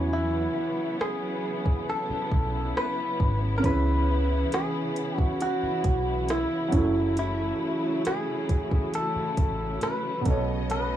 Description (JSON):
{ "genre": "contemporary R&B", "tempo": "68 BPM", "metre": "4/4", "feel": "straight", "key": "unclear", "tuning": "A4 = 440 Hz", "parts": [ { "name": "direct-recorded clean electric guitar", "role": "melody", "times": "0.0-11.0 s", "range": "E4 to B4", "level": "-29 LUFS", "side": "equal", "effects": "tape echo" }, { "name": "clear concert grand piano", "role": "accompaniment", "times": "0.0-11.0 s", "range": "B2 to G#5", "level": "-32 LUFS", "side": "right 3 dB", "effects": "none" }, { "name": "warm studio string section", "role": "sustained chords", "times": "0.0-11.0 s", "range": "C#3 to D#5", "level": "-32 LUFS", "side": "left 1 dB", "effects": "none" }, { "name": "vintage muted fingered electric bass", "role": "bass", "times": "0.0-11.0 s", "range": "F#1 to E2", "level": "-28 LUFS", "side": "equal", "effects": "none" }, { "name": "smooth R&B drum kit", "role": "drums", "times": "1.0-10.9 s", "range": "hi-hat, kick drum, rim click", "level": "-26 LUFS", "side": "equal", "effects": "overdrive" } ], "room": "little or no reverb", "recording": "dry, gritty hardware recording, small room ambience", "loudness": "-24 LUFS", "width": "side -11 dB against mid", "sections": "0.0-11.0 A section", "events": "none", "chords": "0.0 E69; 3.6 C#m7; 6.7 F#m7; 10.3 B9" }